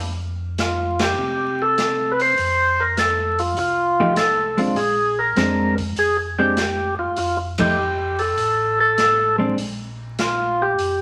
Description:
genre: soul jazz organ trio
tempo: 100 BPM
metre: 4/4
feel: swing 69% on 8ths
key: unclear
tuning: A4 = 440 Hz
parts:
  - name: mellow tonewheel organ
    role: bass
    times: 0.0-11.0 s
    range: F1 to C3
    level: -32 LUFS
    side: equal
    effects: overdrive
  - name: percussive tonewheel organ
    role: melody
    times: 0.6-11.0 s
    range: F4 to C5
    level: -21 LUFS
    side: equal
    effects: slow rotary speaker
  - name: swinging big-band drum kit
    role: drums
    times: 0.6-11.0 s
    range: hi-hat, kick drum, ride cymbal, snare drum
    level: -31 LUFS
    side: equal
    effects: none
  - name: hollow-body jazz guitar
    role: accompaniment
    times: 4.0-9.6 s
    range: F3 to G4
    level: -24 LUFS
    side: equal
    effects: none
room: wet studio reverb, RT60 0.9 s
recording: vinyl crackle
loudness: -20 LUFS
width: mono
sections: 0.0-11.0 A section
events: band accent 0.9-1.2, 7.5-7.8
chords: 0.0 Fadd9; 4.8 Bb9; 7.2 Fadd9; 9.6 Bb5

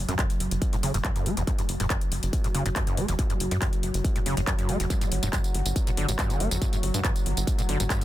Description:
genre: driving peak-time techno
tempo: 140 BPM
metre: 4/4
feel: straight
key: F# phrygian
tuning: A4 = 440 Hz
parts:
  - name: tight sequencer bass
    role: bass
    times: 0.0-7.9 s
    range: E1 to G2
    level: -29 LUFS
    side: equal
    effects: sidechain pumping
  - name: analog drone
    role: drone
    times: 0.0-8.0 s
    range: F#3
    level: -35 LUFS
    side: equal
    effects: chorus, sidechain pumping
  - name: overdriven acid bass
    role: riff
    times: 0.1-8.0 s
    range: E2 to Bb3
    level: -31 LUFS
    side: equal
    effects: distortion, wide subtle chorus, sidechain pumping, digital delay
  - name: techno drum kit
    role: drums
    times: 0.1-8.0 s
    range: handclaps, hi-hat, tambourine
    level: -32 LUFS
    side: left 1 dB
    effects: none
  - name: electronic kick drum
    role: drums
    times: 0.2-8.0 s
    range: none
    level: -27 LUFS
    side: equal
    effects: distortion
room: little or no reverb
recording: dense, heavily limited modern master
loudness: -24 LUFS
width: side -14 dB against mid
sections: 0.0-8.0 A section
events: filter sweep on acid bass 0.0-8.0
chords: none

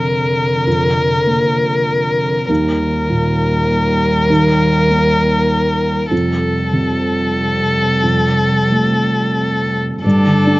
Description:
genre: neoclassical piano and strings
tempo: 88-101 BPM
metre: 3/4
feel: rubato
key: unclear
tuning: A4 = 440 Hz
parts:
  - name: warm violin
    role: melody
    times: 0.0-10.6 s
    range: A4 to Bb4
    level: -16 LUFS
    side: left 2 dB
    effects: none
  - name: warm cello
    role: second line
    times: 0.0-10.6 s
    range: D3 to G3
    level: -21 LUFS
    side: right 2 dB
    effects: none
  - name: felt-muted upright piano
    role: accompaniment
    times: 0.0-10.6 s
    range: Eb2 to D4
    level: -18 LUFS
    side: right 1 dB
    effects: none
  - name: warm double bass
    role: bass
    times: 0.0-10.6 s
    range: F1 to Eb2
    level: -20 LUFS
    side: equal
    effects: none
  - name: warm viola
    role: accompaniment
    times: 10.0-10.6 s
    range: D4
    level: -22 LUFS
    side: right 1 dB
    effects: none
  - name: ethereal airy pad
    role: sustained chords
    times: 10.2-10.6 s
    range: A3 to D5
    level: -26 LUFS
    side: equal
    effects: none
room: little or no reverb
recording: recorded outdoors, with no room sound, nothing above 7.6 kHz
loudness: -13 LUFS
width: side -19 dB against mid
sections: 0.0-10.0 A section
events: none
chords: 0.0 Bb/F; 2.5 Eb; 6.1 Fadd9; 10.0 Gsus2

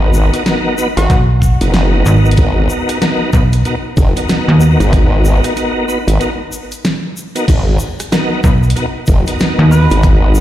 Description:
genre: glitch hop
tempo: 94 BPM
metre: 4/4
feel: swing 61% on 16ths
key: G# minor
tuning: A4 = 440 Hz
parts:
  - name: tonewheel organ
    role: stabs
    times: 0.0-10.4 s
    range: B3 to B4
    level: -18 LUFS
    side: equal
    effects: chorus vibrato, fast rotary speaker, sidechain pumping, tape echo
  - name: formant-sweep wobble bass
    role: bass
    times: 0.0-10.4 s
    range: F#1 to G#1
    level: -11 LUFS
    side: equal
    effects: chorus
  - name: tube shaker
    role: percussion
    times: 0.1-10.4 s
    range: none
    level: -32 LUFS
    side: left 3 dB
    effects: none
  - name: dubstep drum kit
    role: drums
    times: 0.3-10.2 s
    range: crash cymbal, hi-hat, rim click, snare drum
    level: -20 LUFS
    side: equal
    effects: none
  - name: sync lead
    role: melody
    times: 1.0-1.1, 9.7-9.9 s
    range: F#4 to B4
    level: -23 LUFS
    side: right 1 dB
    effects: chorus, tape echo
  - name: slap-like FM bass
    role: bass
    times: 1.1-9.9 s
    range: G#1 to D#2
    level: -9 LUFS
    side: equal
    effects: none
  - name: electronic kick drum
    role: drums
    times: 1.1-10.2 s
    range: none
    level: -12 LUFS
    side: equal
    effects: none
room: little or no reverb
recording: played on a big sound system in a bare room, large studio reverb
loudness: -10 LUFS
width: side -13 dB against mid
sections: 0.0-10.4 A section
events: break 6.2-7.5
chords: 0.0 G#m9

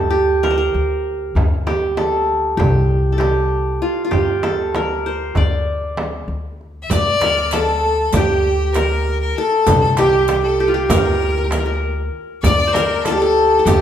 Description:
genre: Turkish makam ensemble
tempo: 195 BPM (eighths)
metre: 9/8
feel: straight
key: D makam ussak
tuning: A4 = 440 Hz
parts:
  - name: qanun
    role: melody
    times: 0.0-13.8 s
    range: F4 to D5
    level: -18 LUFS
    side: equal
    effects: none
  - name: upright bass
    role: bass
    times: 0.0-13.8 s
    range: C2 to D2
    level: -21 LUFS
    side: left 1 dB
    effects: none
  - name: darbuka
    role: percussion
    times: 0.4-13.8 s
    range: none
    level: -25 LUFS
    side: right 2 dB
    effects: none
  - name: frame drum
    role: percussion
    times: 0.4-13.8 s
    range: none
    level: -24 LUFS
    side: right 1 dB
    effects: none
  - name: bright violin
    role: second line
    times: 6.8-13.8 s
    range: G4 to E5-20c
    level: -20 LUFS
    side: left 3 dB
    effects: none
  - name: riq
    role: percussion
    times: 6.9-13.8 s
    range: none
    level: -28 LUFS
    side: right 5 dB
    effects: none
room: wet recital hall reverb, RT60 1.4 s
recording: minimal, uncompressed stereo recording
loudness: -15 LUFS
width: side -9 dB against mid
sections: 0.0-6.9 A section; 6.9-13.8 B section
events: none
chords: none

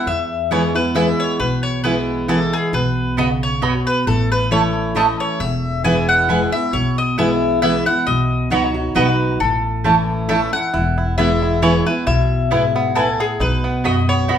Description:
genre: bluegrass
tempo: 135 BPM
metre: 3/4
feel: swing 54% on 8ths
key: E major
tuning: A4 = 445 Hz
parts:
  - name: bluegrass banjo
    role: melody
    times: 0.0-0.1, 10.7-14.4 s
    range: B3 to F#4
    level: -25 LUFS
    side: right 2 dB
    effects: none
  - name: mandolin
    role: melody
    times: 0.0-14.4 s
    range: G#4 to G#5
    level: -20 LUFS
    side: left 2 dB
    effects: none
  - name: picked steel-string acoustic guitar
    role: accompaniment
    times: 0.0-14.4 s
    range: E2 to F#4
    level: -20 LUFS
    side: equal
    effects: none
  - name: upright bass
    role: bass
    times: 0.1-14.4 s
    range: E1 to E2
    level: -23 LUFS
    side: left 1 dB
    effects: none
  - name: mandolin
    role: stabs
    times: 0.5-14.4 s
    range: A3 to B5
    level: -21 LUFS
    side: right 4 dB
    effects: none
room: moderate large studio reverb, RT60 0.9 s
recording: band playing live in one room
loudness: -15 LUFS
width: side -9 dB against mid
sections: 0.1-14.4 A section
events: none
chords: 0.1 E; 2.7 B; 4.1 A; 5.4 E; 8.1 B; 9.4 A; 10.7 E; 13.4 B

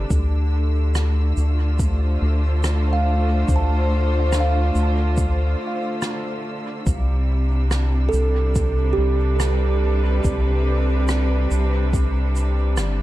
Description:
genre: ambient dub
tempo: 71 BPM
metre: 4/4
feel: straight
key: D dorian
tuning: A4 = 442 Hz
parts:
  - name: bright symphonic string section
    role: sustained chords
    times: 0.0-13.0 s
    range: C3 to E6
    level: -26 LUFS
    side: equal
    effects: none
  - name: kalimba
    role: arpeggios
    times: 0.0-11.6 s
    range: G4 to A5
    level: -28 LUFS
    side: right 4 dB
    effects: vintage 12-bit sampler grit, tape echo
  - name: round analog bass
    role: bass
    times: 0.0-13.0 s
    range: G1 to D2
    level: -19 LUFS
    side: equal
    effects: none
  - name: electronic kick drum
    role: drums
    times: 0.1-12.1 s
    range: none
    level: -23 LUFS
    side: equal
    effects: none
  - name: shaker and rim click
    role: drums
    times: 0.1-13.0 s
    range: none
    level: -31 LUFS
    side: right 1 dB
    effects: dub echo
room: small room ambience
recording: dark, warm production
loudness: -18 LUFS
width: side -16 dB against mid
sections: 0.0-13.0 A section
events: none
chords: 0.1 Dm7; 6.9 Cmaj7

